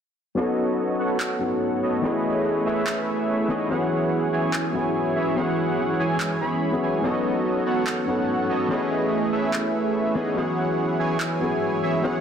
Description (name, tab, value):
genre	future bass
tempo	144 BPM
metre	4/4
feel	half-time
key	E major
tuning	A4 = 439 Hz
part	felt-muted upright piano	accompaniment	0.3-12.2 s	E3 to A4	-26 LUFS	left 3 dB	low-pass filter, dub echo
part	ethereal airy pad	sustained chords	1.8-12.2 s	E3 to G#4	-32 LUFS	right 2 dB	ensemble chorus, built-in reverb
part	soft supersaw	riff	0.4-12.2 s	E3 to B5	-24 LUFS	right 2 dB	low-pass filter, dub echo
part	electronic handclaps	drums	1.2-11.3 s	none	-29 LUFS	right 1 dB	none
room	moderate digital room reverb, RT60 1.1 s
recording	dense, heavily limited modern master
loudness	-21 LUFS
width	side -8 dB against mid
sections	0.4-12.2 A section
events	filter sweep on supersaw synth 0.4-12.2; filter sweep on felt piano 0.4-12.2; filter sweep on ambient pad 0.4-12.2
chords	0.4 B9; 2.0 Amaj9#11; 3.7 E6; 7.0 B9; 8.7 Amaj9#11; 10.4 E6